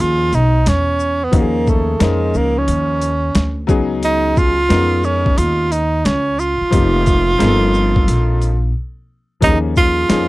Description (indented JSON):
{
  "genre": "hip hop, jazz-hop",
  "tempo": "89 BPM",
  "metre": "4/4",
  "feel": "swing 66% on 16ths",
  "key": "unclear",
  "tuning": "A4 = 444 Hz",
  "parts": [
    { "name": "breathy tenor saxophone", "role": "melody", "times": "0.0-10.3 s", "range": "Ab3 to F4", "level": "-17 LUFS", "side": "right 2 dB", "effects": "none" },
    { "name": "clear grand piano", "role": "accompaniment", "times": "0.0-10.3 s", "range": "F3 to Bb4", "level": "-21 LUFS", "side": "left 4 dB", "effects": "none" },
    { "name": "upright bass", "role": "bass", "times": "0.0-10.3 s", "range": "F1 to F2", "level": "-18 LUFS", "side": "equal", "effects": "none" },
    { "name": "boom bap sampler-style drum kit", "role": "drums", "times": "0.3-10.3 s", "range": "hi-hat, kick drum, shaker, snare drum", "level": "-16 LUFS", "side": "equal", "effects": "overdrive" }
  ],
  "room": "little or no reverb",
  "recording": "dry, close 1970s-style studio recording",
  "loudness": "-13 LUFS",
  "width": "side -19 dB against mid",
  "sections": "0.0-9.4 A section",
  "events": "break 8.7-9.4",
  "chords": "0.0 Eb9sus4; 3.7 Db9sus4; 6.7 F9sus4; 9.4 Eb9sus4",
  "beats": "0.66 | 1.33 2.00 2.68 3.35 | 4.03 4.70 5.38 6.05 | 6.72 7.40 8.07 8.75 | 9.42 10.10"
}